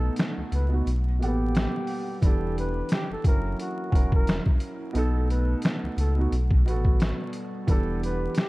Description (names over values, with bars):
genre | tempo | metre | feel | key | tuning
lo-fi hip hop | 88 BPM | 4/4 | swing 57% on 16ths | E dorian | A4 = 439 Hz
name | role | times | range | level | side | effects
trumpet with bucket mute | melody | 0.0-8.5 s | F#4 to B4 | -34 LUFS | equal | none
felt-muted upright piano | accompaniment | 0.0-8.5 s | B2 to F#5 | -32 LUFS | right 3 dB | cassette tape
warbly tape-like pad | sustained chords | 0.0-8.5 s | E3 to F#5 | -38 LUFS | left 2 dB | chorus, built-in reverb
sub bass with octave | bass | 0.0-8.3 s | E1 to C#2 | -26 LUFS | equal | none
trip hop sampler-style drum kit | drums | 0.2-8.5 s | finger snaps, hi-hat, kick drum, snare drum | -23 LUFS | equal | none
room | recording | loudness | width
digital ambience | dark, warm production, vinyl crackle | -23 LUFS | side -21 dB against mid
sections
0.0-8.5 A section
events
kick muted 0.9-2.2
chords
0.0 B7; 0.9 Gmaj7; 2.2 Em7; 3.2 F#7; 4.9 B7; 6.3 Gmaj7; 7.7 Em7